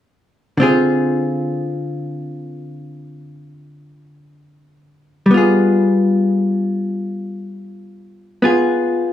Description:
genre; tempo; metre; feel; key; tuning
jazz; 51 BPM; 4/4; swing 66% on 8ths; unclear; A4 = 439 Hz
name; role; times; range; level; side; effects
hollow-body jazz guitar; accompaniment; 0.6-9.1 s; D3 to Ab4; -15 LUFS; left 1 dB; none
room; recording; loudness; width
light reverb; small room reverb; -15 LUFS; side -11 dB against mid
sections
0.6-9.1 A section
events
none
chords
0.6 Dm7b5; 5.3 G7b9

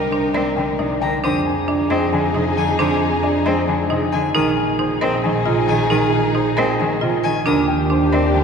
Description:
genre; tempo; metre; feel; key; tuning
classical, minimalist pattern music; 270 BPM (eighths); 7/8; straight; unclear; A4 = 440 Hz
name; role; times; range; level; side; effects
warm grand piano; melody; 0.0-8.4 s; Bb4 to Ab5; -23 LUFS; left 6 dB; none
mellow hollow wooden-headed alto flute; second line; 0.0-8.4 s; G4 to Bb4; -27 LUFS; right 1 dB; none
clear studio string section; sustained chords; 0.0-8.4 s; D4 to Bb4; -27 LUFS; left 3 dB; none
rich studio double bass section; bass; 0.0-8.4 s; Bb1 to F2; -24 LUFS; right 2 dB; none
marimba with hard mallets; arpeggios; 0.1-8.4 s; D4 to Bb4; -21 LUFS; right 3 dB; none
rich cello; accompaniment; 0.3-8.4 s; C3 to C4; -23 LUFS; equal; none
clear violin; arpeggios; 1.0-7.6 s; Ab5 to Eb6; -32 LUFS; left 4 dB; none
room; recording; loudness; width
wet church reverb, RT60 3.5 s; none; -16 LUFS; side -6 dB against mid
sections
0.0-8.4 A section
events
none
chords
0.0 Cm7; 1.2 Fm7; 4.3 Bb7sus4; 7.5 Ebmaj7

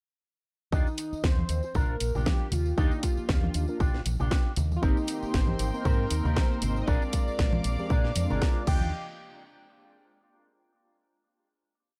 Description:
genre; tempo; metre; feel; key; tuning
nu-disco, nu disco; 117 BPM; 4/4; swing 56% on 16ths; Eb major; A4 = 440 Hz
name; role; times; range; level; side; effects
unison lead; melody; 0.7-8.9 s; Eb4 to G5; -38 LUFS; equal; lush chorus, tape echo
electric guitar with an envelope filter; riff; 0.7-8.9 s; C4 to C5; -41 LUFS; equal; analog chorus, analog delay
fingered electric bass with an envelope filter; bass; 0.7-8.9 s; Ab1 to Bb2; -32 LUFS; equal; none
electronic kick drum; drums; 0.7-8.8 s; none; -28 LUFS; equal; none
tambourine and congas; percussion; 0.7-8.9 s; none; -39 LUFS; equal; none
house drum kit; drums; 1.0-8.8 s; crash cymbal, hi-hat, snare drum; -37 LUFS; equal; none
mellow synth brass; accompaniment; 2.8-8.9 s; Ab3 to Bb4; -38 LUFS; equal; chorus, sidechain pumping, analog delay
warm studio string section; sustained chords; 4.8-8.9 s; G4 to D6; -43 LUFS; equal; sidechain pumping
room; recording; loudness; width
little or no reverb; none; -27 LUFS; mono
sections
0.7-8.9 groove; 8.9-11.0 final hit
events
none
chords
0.7 Ebmaj9; 4.8 Abmaj9; 6.9 Bb7; 8.7 Ebmaj9; 8.9 N.C.

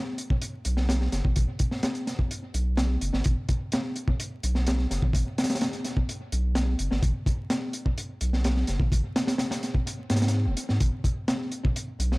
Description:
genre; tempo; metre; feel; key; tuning
breakbeat, breaks; 127 BPM; 4/4; straight; G# minor; A4 = 440 Hz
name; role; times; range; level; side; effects
crunchy breakbeat drum kit; drums; 0.2-12.2 s; hi-hat, kick drum, snare drum; -26 LUFS; equal; tape echo
saturated sub bass; bass; 0.7-12.2 s; D#1 to G#2; -25 LUFS; equal; none
room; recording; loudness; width
light reverb; echo-heavy mix, vinyl crackle; -24 LUFS; side -24 dB against mid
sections
0.0-12.2 A section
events
none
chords
none

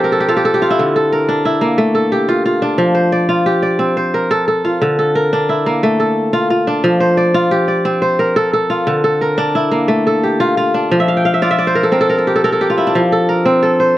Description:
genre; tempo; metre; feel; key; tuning
west african traditional; 118 BPM (dotted quarters); 12/8; straight; F major; A4 = 438 Hz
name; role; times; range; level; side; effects
kora; solo; 0.0-14.0 s; D3 to G5; -12 LUFS; equal; none
room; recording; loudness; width
moderate booth ambience, RT60 0.2 s; worn, warbling old tape, cassette tape, warbly pitch drift; -12 LUFS; side -14 dB against mid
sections
0.0-12.9 A section; 12.9-14.0 B section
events
kora fill 0.0-0.8, 11.0-12.9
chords
0.0 F; 0.8 Dm; 2.8 F; 4.8 Dm; 6.8 F; 8.9 Dm; 10.9 F

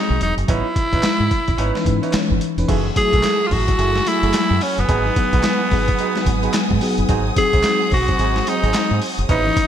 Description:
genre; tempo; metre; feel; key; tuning
R&B, new jack swing; 109 BPM; 4/4; swing 62% on 16ths; F# dorian; A4 = 444 Hz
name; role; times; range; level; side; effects
raspy tenor saxophone; melody; 0.0-9.7 s; B3 to G#4; -20 LUFS; equal; ping-pong delay
FM electric piano with soft pad layer; accompaniment; 0.0-9.7 s; E3 to D#5; -24 LUFS; left 2 dB; chorus, tremolo
deep dub fingered electric bass; bass; 0.1-9.5 s; E1 to G#2; -21 LUFS; equal; none
boom bap sampler-style drum kit; drums; 0.2-9.7 s; crash cymbal, handclaps, hi-hat, kick drum, snare drum; -21 LUFS; equal; overdrive, gated reverb
mellow horn section; stabs; 0.5-9.5 s; G#3 to B4; -28 LUFS; right 8 dB; none
warm studio string section; sustained chords; 2.7-9.7 s; A3 to E6; -28 LUFS; equal; none
room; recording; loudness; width
moderate lush hall reverb, RT60 1.7 s; bright 1980s-style digital production; -16 LUFS; side -9 dB against mid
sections
0.0-2.7 A section; 2.7-9.7 B section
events
none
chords
0.5 C#m9/G#; 2.7 F#m9; 4.9 G#m7; 7.1 G#7

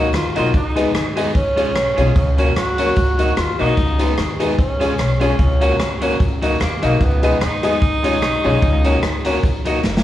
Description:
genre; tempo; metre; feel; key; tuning
ska; 148 BPM; 4/4; swing 55% on 8ths; Db mixolydian; A4 = 441 Hz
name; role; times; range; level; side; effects
electric guitar at the edge of break-up; accompaniment; 0.0-9.8 s; Gb3 to Ab4; -24 LUFS; right 2 dB; none
dark upright piano; stabs; 0.0-9.8 s; Db4 to Eb5; -21 LUFS; left 3 dB; none
upright bass; bass; 0.0-10.0 s; Gb1 to Eb2; -20 LUFS; equal; none
swinging big-band drum kit; drums; 0.1-10.0 s; hi-hat, kick drum, rim click, snare drum; -21 LUFS; equal; vintage 12-bit sampler grit
group handclap; percussion; 0.1-9.9 s; none; -40 LUFS; left 2 dB; none
warm tenor saxophone; melody; 0.2-9.9 s; Bb3 to Gb4; -22 LUFS; equal; none
room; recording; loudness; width
wet large studio reverb, RT60 1.2 s; band playing live in one room, vinyl crackle; -15 LUFS; side -13 dB against mid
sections
0.0-10.0 A section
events
drum fill 9.8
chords
0.0 Ebm/Db; 0.5 Abm/Db; 1.4 Db; 2.2 Gb/Db; 3.0 Ebm/Db; 3.8 Abm/Db; 4.6 Db; 5.4 Gb/Db; 6.2 Ebm/Db; 7.0 Abm/Db; 7.8 Db; 8.6 Gb/Db; 9.4 Ebm/Db

